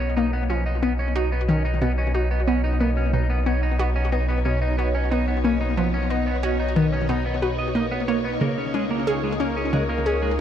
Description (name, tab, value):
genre	ambient, sequencer-driven space music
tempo	91 BPM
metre	4/4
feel	straight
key	B lydian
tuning	A4 = 440 Hz
part	phased string machine	sustained chords	0.0-10.4 s	B2 to C#5	-29 LUFS	left 1 dB	ensemble chorus, phaser
part	twelve-string electric guitar	arpeggios	0.0-10.3 s	G#3 to D#5	-29 LUFS	right 1 dB	auto-pan, ping-pong delay
part	analog pluck	riff	0.0-10.2 s	B2 to G#4	-25 LUFS	left 1 dB	chorus, ping-pong delay
part	warm sub bass	bass	0.0-10.4 s	B1 to C#2	-25 LUFS	equal	none
part	bubbling stepped-filter texture	texture	0.4-10.4 s	D#4 to D#5	-36 LUFS	equal	chorus, built-in reverb
room	moderate plate reverb, RT60 3.5 s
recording	dark, warm production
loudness	-20 LUFS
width	side -9 dB against mid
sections	0.0-10.4 A section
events	fade-in on string machine 0.0-10.4; fade-in on synth texture 0.0-10.4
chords	0.0 Badd9; 8.4 C#6